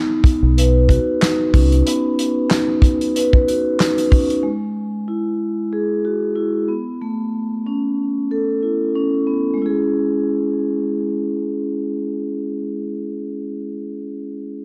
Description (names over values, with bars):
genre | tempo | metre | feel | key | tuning
hip hop, boom-bap hip-hop | 93 BPM | 4/4 | swing 55% on 16ths | C# minor | A4 = 444 Hz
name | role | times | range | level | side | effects
vibraphone with soft mallets | accompaniment | 0.0-14.6 s | G#3 to B4 | -21 LUFS | equal | cassette tape
warm soul drum kit | drums | 0.2-4.4 s | handclaps, hi-hat, kick drum, snare drum | -18 LUFS | equal | none
deep dub fingered electric bass | bass | 0.4-1.8 s | B1 to B#1 | -16 LUFS | equal | none
room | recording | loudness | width
light reverb | dark, warm production | -19 LUFS | mono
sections
0.0-9.6 A section; 9.6-12.2 B section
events
none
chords
0.0 C#9sus4; 4.4 F#sus2; 6.7 B9sus4; 9.6 C#m